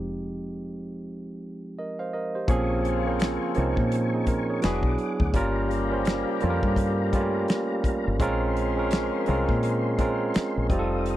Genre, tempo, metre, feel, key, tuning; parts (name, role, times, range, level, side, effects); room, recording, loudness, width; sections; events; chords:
R&B, neo-soul; 84 BPM; 4/4; swing 60% on 16ths; Bb dorian; A4 = 441 Hz
barky tine electric piano; accompaniment; 0.0-11.2 s; F3 to F5; -26 LUFS; right 2 dB; overdrive
deep dub fingered electric bass; bass; 0.0-11.2 s; E1 to Bb2; -28 LUFS; left 1 dB
tonewheel organ; sustained chords; 2.5-11.2 s; G4 to Eb6; -37 LUFS; left 4 dB; slow rotary speaker, chorus vibrato
warm horn section; stabs; 2.5-11.2 s; Db3 to Bb4; -35 LUFS; left 20 dB
warm soul drum kit; drums; 2.5-11.2 s; finger snaps, hi-hat, kick drum, snare drum; -26 LUFS; equal
little or no reverb; -23 LUFS; side -14 dB against mid
0.0-2.5 A section; 2.5-11.2 B section
0.0 Fm9; 2.5 Bbm9; 4.6 E9; 5.3 Gm7b5; 8.2 Bbm9